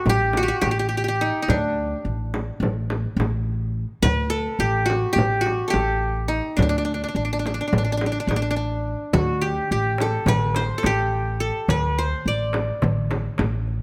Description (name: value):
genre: Turkish makam ensemble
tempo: 212 BPM (eighths)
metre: 9/8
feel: straight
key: unclear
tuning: A4 = 441 Hz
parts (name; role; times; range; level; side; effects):
- qanun; melody; 0.0-13.4 s; D4 to D5; -26 LUFS; equal; none
- upright bass; bass; 0.1-13.8 s; A1 to D2; -27 LUFS; equal; none
- frame drum; percussion; 0.1-13.5 s; none; -28 LUFS; equal; none
- darbuka; percussion; 9.1-13.7 s; none; -31 LUFS; equal; none
room: light reverb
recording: close, detailed microphones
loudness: -23 LUFS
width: mono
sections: 0.0-13.8 A section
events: none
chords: none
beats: 0.06 0.34 0.63 0.91 1.20 | 1.48 1.76 2.05 2.33 2.61 2.90 3.18 3.46 3.75 | 4.03 4.32 4.60 4.88 5.17 5.45 5.73 6.02 6.30 | 6.58 6.87 7.15 7.43 7.72 8.00 8.29 8.57 8.85 | 9.14 9.42 9.70 9.99 10.27 10.55 10.84 11.12 11.40 | 11.69 11.97 12.25 12.54 12.82 13.10 13.38 13.67